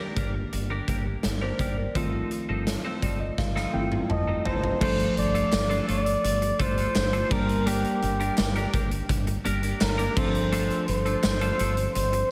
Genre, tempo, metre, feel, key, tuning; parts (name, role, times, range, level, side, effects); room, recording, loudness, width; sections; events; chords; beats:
1980s-style pop; 84 BPM; 4/4; straight; A4 = 438 Hz
tine electric piano; accompaniment; 0.0-12.3 s; Eb3 to Bb5; -33 LUFS; equal
twelve-string electric guitar; riff; 0.0-12.2 s; F3 to Bb4; -36 LUFS; equal; lush chorus, tape echo
woody fretless electric bass; bass; 0.2-12.2 s; G1; -32 LUFS; equal; lush chorus
big rock drum kit; drums; 0.2-12.3 s; crash cymbal, hi-hat, kick drum, snare drum, tambourine, toms; -32 LUFS; equal
breathy flugelhorn; melody; 4.1-12.3 s; G4 to Eb5; -30 LUFS; equal; tape echo
group handclap; percussion; 5.5-11.4 s; -44 LUFS; equal
wet lush hall reverb, RT60 2.2 s; dreamy mix soaked in reverb; -26 LUFS; mono
0.0-4.8 A section; 4.8-12.3 B section
tine electric piano fill 2.7-4.8; drum fill 3.4-4.8
0.0 Ebmaj7/G; 2.0 F7/G; 4.8 Dm/G; 7.3 Gm; 10.2 F6/G
0.53 1.24 | 1.95 2.67 3.38 4.10 | 4.81 5.53 6.24 6.95 | 7.67 8.38 9.10 9.81 | 10.53 11.24 11.95